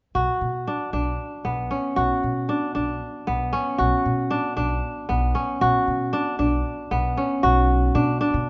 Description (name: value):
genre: contemporary instrumental, chamber music in an uneven meter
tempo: 231 BPM (eighths)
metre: 7/8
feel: straight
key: B minor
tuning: A4 = 439 Hz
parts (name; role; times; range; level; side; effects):
- kora; arpeggios; 0.1-8.5 s; B3 to F#4; -24 LUFS; equal; none
- upright bass; bass; 0.1-8.5 s; B1 to B2; -28 LUFS; equal; none
room: moderate scoring stage reverb, RT60 1.8 s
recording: nothing above 7.5 kHz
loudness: -23 LUFS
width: mono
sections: 0.2-7.4 A section; 7.4-8.5 B section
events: none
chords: 0.2 Bmadd9